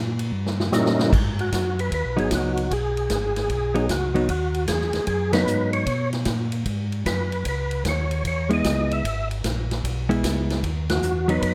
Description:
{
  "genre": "soul jazz organ trio",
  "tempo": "152 BPM",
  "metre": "4/4",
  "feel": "swing 66% on 8ths",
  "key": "G# minor",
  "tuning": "A4 = 436 Hz",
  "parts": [
    { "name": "mellow tonewheel organ", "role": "bass", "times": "0.0-11.5 s", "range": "G#1 to B2", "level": "-28 LUFS", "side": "equal", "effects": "chorus vibrato, slow rotary speaker" },
    { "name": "swinging big-band drum kit", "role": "drums", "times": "0.2-11.5 s", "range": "crash cymbal, hi-hat, kick drum, ride cymbal, snare drum", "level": "-30 LUFS", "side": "equal", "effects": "none" },
    { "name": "overdriven tonewheel organ", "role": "melody", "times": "0.7-11.5 s", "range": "G3 to E5", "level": "-28 LUFS", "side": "equal", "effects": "slow rotary speaker, chorus vibrato" },
    { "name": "hollow-body jazz guitar", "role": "accompaniment", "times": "2.2-5.8, 8.5-11.5 s", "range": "F#3 to E4", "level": "-26 LUFS", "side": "equal", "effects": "none" }
  ],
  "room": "light reverb, studio reverb",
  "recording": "rough home demo mix",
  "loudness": "-23 LUFS",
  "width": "mono",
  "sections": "0.0-1.1 A section; 1.1-11.5 B section",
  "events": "drum fill 0.3-1.1; band accent 5.3, 10.8",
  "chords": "0.0 D#7b9; 1.1 G#m7; 7.5 C#m7; 10.6 G#m7 (rootless)"
}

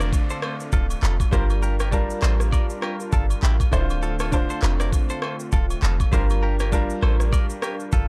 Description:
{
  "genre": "afrobeats",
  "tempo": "100 BPM",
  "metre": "4/4",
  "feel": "swing 58% on 16ths",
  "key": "D minor",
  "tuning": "A4 = 440 Hz",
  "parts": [
    { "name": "clear baby grand piano", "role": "accompaniment", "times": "0.0-8.1 s", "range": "D3 to D5", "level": "-33 LUFS", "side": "equal", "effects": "none" },
    { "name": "warm analog pad", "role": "sustained chords", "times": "0.0-8.1 s", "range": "D3 to Bb4", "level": "-36 LUFS", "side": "equal", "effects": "chorus, sidechain pumping" },
    { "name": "direct-recorded clean electric guitar", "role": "riff", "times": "0.0-8.1 s", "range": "E4 to D5", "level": "-35 LUFS", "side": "equal", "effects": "analog delay" },
    { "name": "clean 808-style bass", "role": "bass", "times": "0.0-8.1 s", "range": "D1 to A1", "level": "-24 LUFS", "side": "equal", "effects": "none" },
    { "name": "afro-pop drum kit", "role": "drums", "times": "0.0-8.1 s", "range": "handclaps, kick drum, rim click, shaker", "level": "-26 LUFS", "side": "equal", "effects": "none" },
    { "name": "downlifter", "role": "sound effects", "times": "0.0-3.7 s", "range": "none", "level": "-48 LUFS", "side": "equal", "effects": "none" },
    { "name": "agogo bells and woodblock", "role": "percussion", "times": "0.1-7.8 s", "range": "none", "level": "-40 LUFS", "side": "equal", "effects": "none" }
  ],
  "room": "digital ambience",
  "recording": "dry, gritty hardware recording",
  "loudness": "-22 LUFS",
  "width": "mono",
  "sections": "0.0-8.1 A section",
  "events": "none",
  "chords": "0.0 Dm7; 1.3 Gm7; 3.7 Dm7; 6.1 Gm7"
}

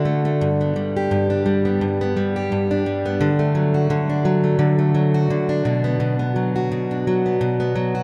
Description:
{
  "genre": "pop",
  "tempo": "86 BPM",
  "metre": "4/4",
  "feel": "swing 55% on 16ths",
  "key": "D major",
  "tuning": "A4 = 440 Hz",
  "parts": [
    { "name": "fingerpicked plugged-in steel-string acoustic guitar", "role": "solo", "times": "0.0-8.0 s", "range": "G2 to G4", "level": "-20 LUFS", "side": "equal", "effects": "none" }
  ],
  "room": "wet cathedral reverb, RT60 5.5 s",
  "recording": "in a vast, echoing space",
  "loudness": "-20 LUFS",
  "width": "mono",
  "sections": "0.0-8.0 A section",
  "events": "none",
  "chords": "0.4 G; 3.2 D; 5.7 Bm"
}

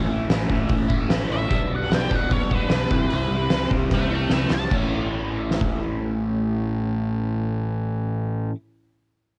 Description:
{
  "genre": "garage rock duo or trio",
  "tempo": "150 BPM",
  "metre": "4/4",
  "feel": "straight",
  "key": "A mixolydian",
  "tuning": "A4 = 442 Hz",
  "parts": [
    { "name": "crunchy overdriven guitar", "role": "riff", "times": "0.0-8.6 s", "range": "A2 to E4", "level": "-27 LUFS", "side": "equal", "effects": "phaser" },
    { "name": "fuzz fingered electric bass", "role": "bass", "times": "0.0-8.5 s", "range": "A1 to C2", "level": "-30 LUFS", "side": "equal", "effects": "overdrive, tube saturation" },
    { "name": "oversized low-tuned drum kit", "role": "drums", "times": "0.3-5.7 s", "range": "crash cymbal, hi-hat, kick drum, snare drum", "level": "-26 LUFS", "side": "equal", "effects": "cassette tape" },
    { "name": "octave-fuzz lead guitar", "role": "melody", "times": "1.3-4.7 s", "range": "B4 to A5", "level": "-31 LUFS", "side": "equal", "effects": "distortion, cassette tape" }
  ],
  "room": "little or no reverb",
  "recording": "home recording on cassette",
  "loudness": "-23 LUFS",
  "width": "mono",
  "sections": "0.0-4.7 A section; 4.7-7.9 B section",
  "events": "lead electric guitar solo 0.0-4.7; drum fill 3.9-4.7",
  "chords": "0.0 A; 1.5 G/B; 2.9 C; 4.7 A"
}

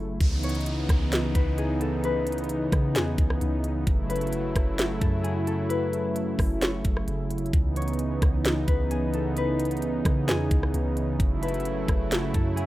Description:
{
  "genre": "hip hop, atmospheric cloud-rap",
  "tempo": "131 BPM",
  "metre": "4/4",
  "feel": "half-time",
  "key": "C# minor",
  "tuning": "A4 = 440 Hz",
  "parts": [
    { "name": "concert harp", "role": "melody", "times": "0.0-12.7 s", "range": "G#4 to C#5", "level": "-33 LUFS", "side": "left 4 dB", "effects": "low-pass filter, tape echo" },
    { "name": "warm analog pad", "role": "sustained chords", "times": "0.0-12.7 s", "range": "C#3 to E4", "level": "-28 LUFS", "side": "right 1 dB", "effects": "chorus, sidechain pumping" },
    { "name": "soft 808-style bass", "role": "bass", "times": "0.0-12.7 s", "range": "F#1 to C#3", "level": "-29 LUFS", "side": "equal", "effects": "none" },
    { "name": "trap drum kit", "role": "drums", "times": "0.2-12.7 s", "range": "hi-hat, kick drum, rim click, snare drum", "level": "-25 LUFS", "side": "equal", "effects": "none" },
    { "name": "downlifter", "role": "sound effects", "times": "0.2-3.9 s", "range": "none", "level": "-41 LUFS", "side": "equal", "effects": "none" }
  ],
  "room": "digital ambience",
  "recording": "rough home demo mix",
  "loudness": "-23 LUFS",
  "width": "side -16 dB against mid",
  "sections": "0.2-12.7 A section",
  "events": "none",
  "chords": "0.2 C#m9; 3.9 F#m7; 7.5 C#m9; 11.2 F#m7"
}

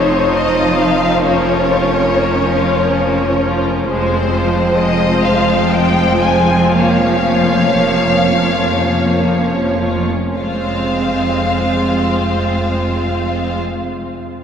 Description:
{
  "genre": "classical, slow romantic movement for string orchestra",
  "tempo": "29-46 BPM (dotted quarters)",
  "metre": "6/8",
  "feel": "rubato",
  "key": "F minor",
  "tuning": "A4 = 439 Hz",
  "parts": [
    { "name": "warm studio violin section", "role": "melody", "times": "0.0-13.6 s", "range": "C5 to Ab5", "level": "-18 LUFS", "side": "left 3 dB", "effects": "none" },
    { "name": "rich studio violin section", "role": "second line", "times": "0.0-13.6 s", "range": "Ab3 to Db5", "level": "-20 LUFS", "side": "equal", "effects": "none" },
    { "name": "rich studio viola section", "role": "accompaniment", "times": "0.0-13.6 s", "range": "F3 to Eb4", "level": "-17 LUFS", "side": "right 1 dB", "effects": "none" },
    { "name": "rich studio double bass section", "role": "bass", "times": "0.0-13.6 s", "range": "F1", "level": "-22 LUFS", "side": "right 1 dB", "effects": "none" },
    { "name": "warm studio cello section", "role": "bass", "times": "0.0-13.6 s", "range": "F2", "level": "-21 LUFS", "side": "right 1 dB", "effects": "none" }
  ],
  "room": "wet cathedral reverb, RT60 5.3 s",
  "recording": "recorded in a church or concert hall",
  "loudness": "-12 LUFS",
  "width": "side -8 dB against mid",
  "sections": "0.0-10.4 A section; 10.4-14.4 B section",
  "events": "slowing down 2.6-10.4",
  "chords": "0.0 F7(no3); 1.2 Bbm/F; 3.9 Fm; 6.7 Bbm/F; 10.4 Fm"
}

